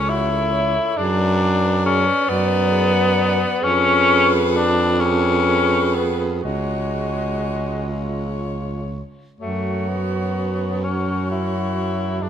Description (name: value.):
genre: classical, lyrical piece for single-reed quartet.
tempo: 39-46 BPM (dotted quarters).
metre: 6/8.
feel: rubato.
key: F# minor.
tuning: A4 = 445 Hz.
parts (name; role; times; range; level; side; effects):
clear soprano saxophone; melody; 0.0-12.3 s; B4 to D5; -28 LUFS; left 10 dB; none.
clear alto saxophone; second line; 0.0-12.3 s; E#4 to D5; -28 LUFS; right 8 dB; none.
mellow tenor saxophone; accompaniment; 0.0-12.3 s; G#3 to E4; -20 LUFS; left 2 dB; none.
warm baritone saxophone; bass; 0.0-12.3 s; C#2 to F#2; -21 LUFS; right 2 dB; none.
room: wet recital hall reverb, RT60 1.6 s.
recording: none.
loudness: -17 LUFS.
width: side -9 dB against mid.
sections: 0.0-12.3 A section.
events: none.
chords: 0.0 F#m; 1.0 G#m7b5/F#; 3.6 C#7/E#; 6.4 C#sus4; 9.4 F#5.